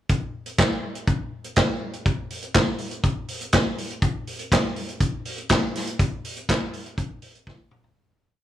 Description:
disco; 122 BPM; 4/4; straight
vintage drum kit; drums; 0.1-7.9 s; handclaps, hi-hat, kick drum, snare drum, toms; -22 LUFS; equal
light reverb; small room ambience; -22 LUFS; side -12 dB against mid
0.1-8.0 breakdown
fade-out 6.0-8.0; drum fill 7.5-8.0
| 0.10 0.59 1.08 1.57 | 2.06 2.56 3.05 3.54 | 4.03 4.52 5.01 5.50 | 5.99 6.48 6.97 7.46

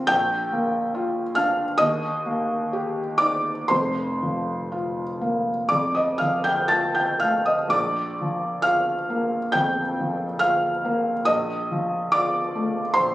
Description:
classical, romantic nocturne for solo piano; 57-73 BPM; 4/4; rubato; Bb major; A4 = 440 Hz
felt-muted upright piano; solo; 0.0-13.1 s; F1 to A6; -21 LUFS; equal
light reverb; recorded on a phone in the room, studio reverb; -21 LUFS; side -16 dB against mid
0.0-13.1 A section
0.1 Bb; 1.8 Eb; 3.7 Fsus4; 5.7 F; 7.7 Bb; 11.3 F7/Bb
| 0.11 0.95 1.81 2.72 | 3.70 4.71 5.70 6.70 | 7.72 8.65 9.55 10.42 | 11.28 12.14 12.97

